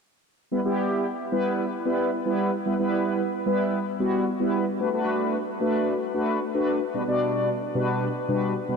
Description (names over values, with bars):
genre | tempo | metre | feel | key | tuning
pop | 112 BPM | 4/4 | straight | E minor | A4 = 445 Hz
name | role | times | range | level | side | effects
mellow synth brass | solo | 0.5-8.8 s | B2 to D5 | -23 LUFS | equal | chorus, ping-pong delay
room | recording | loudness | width
wet huge ambient reverb, RT60 7.6 s | dreamy mix soaked in reverb | -23 LUFS | side -5 dB against mid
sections
0.5-8.8 A section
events
none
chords
0.5 Em; 4.8 Bm7; 6.9 Gmaj7/B